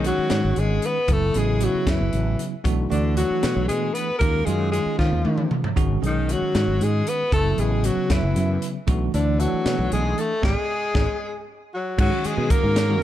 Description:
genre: electric jazz fusion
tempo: 77 BPM (dotted quarters)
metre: 6/8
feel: straight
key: G# minor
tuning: A4 = 440 Hz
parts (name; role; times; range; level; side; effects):
- breathy alto saxophone; melody; 0.0-13.0 s; D4 to B4; -26 LUFS; left 1 dB; none
- bright tenor saxophone; second line; 0.0-13.0 s; D3 to B3; -30 LUFS; left 3 dB; none
- bell-like tine electric piano; accompaniment; 0.0-13.0 s; C#3 to A4; -26 LUFS; right 1 dB; medium stereo tremolo
- fretless electric bass; bass; 0.0-13.0 s; F#1 to D#3; -23 LUFS; equal; none
- crisp fusion drum kit; drums; 0.0-12.9 s; crash cymbal, hi-hat, kick drum, snare drum, toms; -25 LUFS; equal; none
room: little or no reverb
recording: dark, warm production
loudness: -19 LUFS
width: side -12 dB against mid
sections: 0.0-12.0 A section; 12.0-13.0 B section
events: drum fill 5.0-5.8; band accent 10.4-12.0; tine electric piano fill 11.2-12.0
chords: 0.0 G#m7; 1.1 F#m7; 2.7 Bm7; 4.2 D#m11; 5.8 G#m7; 7.3 F#m7; 8.9 Bm7; 10.4 G#m; 12.0 G#7sus2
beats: 0.31 | 1.09 1.87 | 2.65 3.43 | 4.21 4.99 | 5.77 6.55 | 7.33 8.10 | 8.88 9.66 | 10.44 11.21 | 11.99 12.76

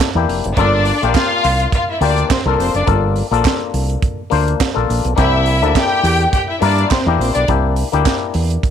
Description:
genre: disco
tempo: 104 BPM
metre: 4/4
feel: swing 56% on 16ths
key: unclear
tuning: A4 = 440 Hz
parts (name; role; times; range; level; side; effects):
- bright clav; accompaniment; 0.0-8.7 s; A3 to C5; -19 LUFS; left 13 dB; auto-wah
- tight funk drum kit; drums; 0.0-8.7 s; hi-hat, kick drum, snare drum; -20 LUFS; right 4 dB; none
- group handclap; percussion; 0.0-8.2 s; none; -29 LUFS; right 14 dB; none
- fingered electric bass; bass; 0.1-8.6 s; F1 to G2; -17 LUFS; right 1 dB; none
- clear studio string section; second line; 0.6-7.4 s; Bb3 to G5; -17 LUFS; left 1 dB; none
room: light reverb, studio reverb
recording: 1960s-style stereo with parts hard left and right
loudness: -13 LUFS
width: side -8 dB against mid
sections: 0.0-8.7 A section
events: none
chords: 0.0 C9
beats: | 0.57 1.15 1.72 2.30 | 2.87 3.45 4.03 4.60 | 5.18 5.75 6.33 6.91 | 7.48 8.06 8.63

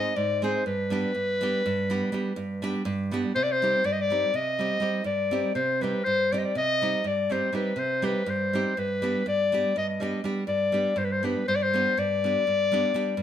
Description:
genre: balkan folk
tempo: 244 BPM (eighths)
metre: 11/8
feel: straight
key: unclear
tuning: A4 = 440 Hz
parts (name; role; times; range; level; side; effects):
- clear clarinet; melody; 0.0-13.2 s; B4 to Eb5; -25 LUFS; left 3 dB; plate reverb
- nylon-string guitar; accompaniment; 0.0-13.2 s; G2 to Ab4; -28 LUFS; right 3 dB; none
room: wet studio reverb, RT60 0.6 s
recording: none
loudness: -24 LUFS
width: side -10 dB against mid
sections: 0.0-3.3 A section; 3.3-13.2 B section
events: none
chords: 0.0 Ab; 0.7 G; 3.3 Cm; 8.8 G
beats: 0.17 0.42 | 0.66 0.90 1.15 1.39 1.64 1.88 2.12 2.37 2.62 2.86 3.10 | 3.35 3.59 3.84 4.08 4.33 4.58 4.82 5.07 5.31 5.56 5.80 | 6.05 6.29 6.54 6.79 7.03 7.28 7.52 7.77 8.02 8.26 8.51 | 8.76 9.00 9.25 9.49 9.74 9.99 10.23 10.48 10.73 10.97 11.22 | 11.47 11.71 11.96 12.21 12.45 12.70 12.95 13.19

